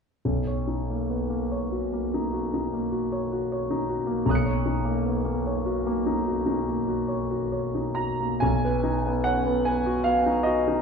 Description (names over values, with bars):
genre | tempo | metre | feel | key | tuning
classical, impressionist solo piano | 66-80 BPM | 5/4 | rubato | B major | A4 = 440 Hz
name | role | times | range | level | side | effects
clear concert grand piano | solo | 0.3-10.8 s | B1 to C#7 | -23 LUFS | equal | none
room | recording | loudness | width
wet recital hall reverb, RT60 1.4 s | recorded in a church or concert hall | -24 LUFS | side -6 dB against mid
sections
0.2-8.4 A section; 8.4-10.8 B section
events
none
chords
0.2 Bmaj9; 8.4 B6